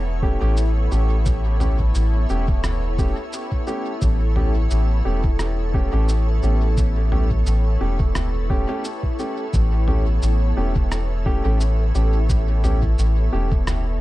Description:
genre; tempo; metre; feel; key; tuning
ambient dub; 87 BPM; 4/4; swing 54% on 16ths; A mixolydian; A4 = 437 Hz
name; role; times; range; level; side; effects
soft additive organ-like pad; sustained chords; 0.0-14.0 s; B3 to C#5; -29 LUFS; equal; ensemble chorus, built-in reverb
soft dub sub bass; bass; 0.0-14.0 s; E1 to A1; -19 LUFS; equal; tube saturation
warm upright piano; stabs; 0.2-13.5 s; A3 to G4; -29 LUFS; equal; dub echo
electronic kick drum; drums; 0.2-13.6 s; none; -21 LUFS; equal; none
lo-fi sampler-style drum kit; drums; 0.6-13.8 s; cabasa, rim click, toms; -30 LUFS; equal; dub echo
room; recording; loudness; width
little or no reverb; dark, warm production; -18 LUFS; side -17 dB against mid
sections
0.0-14.0 A section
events
none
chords
0.0 A7

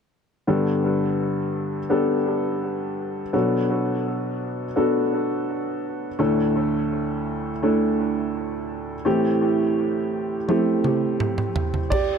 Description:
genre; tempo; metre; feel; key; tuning
piano-driven pop; 84 BPM; 4/4; straight; unclear; A4 = 440 Hz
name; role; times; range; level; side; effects
warm upright piano; accompaniment; 0.5-12.2 s; D2 to D5; -21 LUFS; equal; dub echo
modern studio drum kit; drums; 10.5-12.1 s; crash cymbal, kick drum, toms; -25 LUFS; right 1 dB; none
room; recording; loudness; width
light reverb; echo-heavy mix; -21 LUFS; side -6 dB against mid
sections
0.5-11.9 A section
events
drum fill 10.5-11.9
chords
0.5 Gadd9; 3.3 Bm7; 6.2 Dsus2; 9.1 Am7

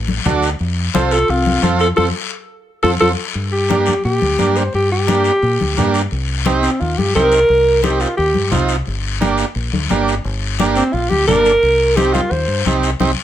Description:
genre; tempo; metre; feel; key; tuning
latin, cumbia; 174 BPM; 4/4; straight; G minor; A4 = 442 Hz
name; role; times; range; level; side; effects
deep dub fingered electric bass; bass; 0.0-13.1 s; G1 to Bb2; -20 LUFS; equal; none
congas; percussion; 0.1-13.1 s; none; -22 LUFS; left 4 dB; none
guiro; percussion; 0.2-13.1 s; none; -26 LUFS; left 9 dB; none
overdriven combo organ; accompaniment; 0.3-13.1 s; Bb3 to A4; -18 LUFS; right 5 dB; none
breathy alto saxophone; melody; 1.0-8.5, 10.8-12.6 s; C4 to C5; -16 LUFS; equal; plate reverb
mellow clarinet; second line; 1.0-3.1 s; C4 to A4; -22 LUFS; left 6 dB; none
room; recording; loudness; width
moderate studio reverb, RT60 0.5 s; none; -13 LUFS; side -11 dB against mid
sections
0.0-3.4 A section; 3.4-13.2 B section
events
band accent 2.0-3.4, 13.0; alto saxophone solo 3.4-13.2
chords
0.0 D; 0.6 F; 3.4 Gm; 6.1 Cm; 8.9 Gm; 11.6 Cm

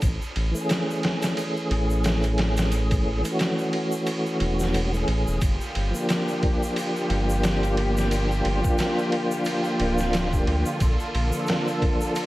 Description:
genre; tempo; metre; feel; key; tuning
trip hop; 89 BPM; 4/4; swing 58% on 16ths; G minor; A4 = 441 Hz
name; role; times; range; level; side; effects
round analog bass; bass; 0.0-11.3 s; D1 to D2; -25 LUFS; equal; none
trip hop sampler-style drum kit; drums; 0.0-12.3 s; kick drum, ride cymbal, snare drum; -27 LUFS; equal; none
tube shaker; percussion; 0.0-12.3 s; none; -42 LUFS; equal; none
tonewheel organ; accompaniment; 0.5-12.3 s; E3 to A4; -26 LUFS; equal; chorus vibrato, slow rotary speaker, tremolo, tape echo
muted studio string section; sustained chords; 5.4-12.3 s; D3 to A4; -29 LUFS; equal; none
room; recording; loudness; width
light reverb, digital ambience; vinyl crackle; -22 LUFS; side -17 dB against mid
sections
0.0-12.3 A section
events
none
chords
0.0 Amaj7; 5.4 Gm7; 10.8 Bbmaj7

